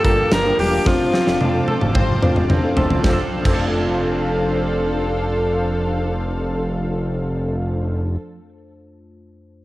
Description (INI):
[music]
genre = 1980s-style pop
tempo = 110 BPM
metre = 4/4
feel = straight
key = F major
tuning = A4 = 443 Hz
[part]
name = bright alto saxophone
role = melody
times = 0.0-1.7 s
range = F4 to Bb4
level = -20 LUFS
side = left 1 dB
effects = cassette tape, analog delay
[part]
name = mellow FM electric piano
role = accompaniment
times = 0.0-9.6 s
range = F2 to C5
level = -26 LUFS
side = left 1 dB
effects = chorus, cassette tape
[part]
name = overdriven semi-hollow guitar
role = accompaniment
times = 0.0-8.6 s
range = F3 to G4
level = -32 LUFS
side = right 3 dB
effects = none
[part]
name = brassy analog pad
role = sustained chords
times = 0.0-8.0 s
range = D4 to D6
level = -28 LUFS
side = equal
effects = chorus, cassette tape
[part]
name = direct-recorded clean electric guitar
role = riff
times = 0.0-8.5 s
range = F3 to A4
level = -30 LUFS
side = right 2 dB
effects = analog chorus, cassette tape, analog delay
[part]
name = fat analog bass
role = bass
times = 0.0-8.2 s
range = E1 to F2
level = -23 LUFS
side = equal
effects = none
[part]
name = big rock drum kit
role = drums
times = 0.0-3.6 s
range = crash cymbal, hi-hat, kick drum, snare drum, tambourine, toms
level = -20 LUFS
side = equal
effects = cassette tape
[part]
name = dark studio violin section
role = second line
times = 1.4-8.2 s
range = F4 to C5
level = -27 LUFS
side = left 1 dB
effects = cassette tape, analog delay
[sound]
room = light reverb, small room ambience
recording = home recording on cassette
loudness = -17 LUFS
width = side -17 dB against mid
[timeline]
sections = 0.0-3.0 A section; 3.0-7.4 B section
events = drum fill 0.9-3.0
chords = 0.0 Gm7; 0.9 F6